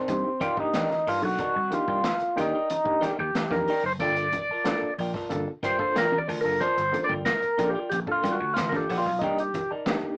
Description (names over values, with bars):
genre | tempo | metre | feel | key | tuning
funk | 92 BPM | 4/4 | straight | C dorian | A4 = 441 Hz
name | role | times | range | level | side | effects
percussive tonewheel organ | melody | 0.0-9.7 s | C4 to D5 | -28 LUFS | equal | slow rotary speaker
clean electric guitar | accompaniment | 0.0-10.1 s | Eb4 to A5 | -35 LUFS | equal | none
barky reed electric piano | stabs | 0.1-10.1 s | Bb3 to A4 | -34 LUFS | equal | overdrive, fast tremolo
vintage slap bass | bass | 0.1-10.1 s | F#1 to C3 | -37 LUFS | equal | none
swinging big-band drum kit | drums | 0.1-10.0 s | hi-hat, kick drum, snare drum | -37 LUFS | equal | none
congas | percussion | 0.1-10.0 s | none | -37 LUFS | equal | none
room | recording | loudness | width
wet booth ambience, RT60 0.2 s | rough rehearsal-room recording, warm saturation, small speaker sound | -26 LUFS | mono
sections
0.0-10.2 A section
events
tonewheel organ solo 0.0-10.2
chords
0.0 Cm9; 4.0 Gm7; 9.2 Cm9